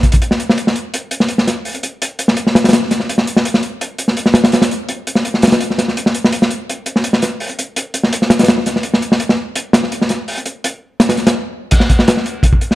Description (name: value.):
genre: drum and bass.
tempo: 167 BPM.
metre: 4/4.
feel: straight.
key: none.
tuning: none.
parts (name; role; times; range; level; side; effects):
crunchy breakbeat drum kit; drums; 0.0-12.8 s; crash cymbal, hi-hat, kick drum, snare drum; -12 LUFS; equal; none.
room: light reverb.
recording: dark, warm production.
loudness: -13 LUFS.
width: side -16 dB against mid.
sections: 0.2-11.7 A section; 11.7-12.8 B section.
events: stop 11.4-11.7; drop 11.7-12.8.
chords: none.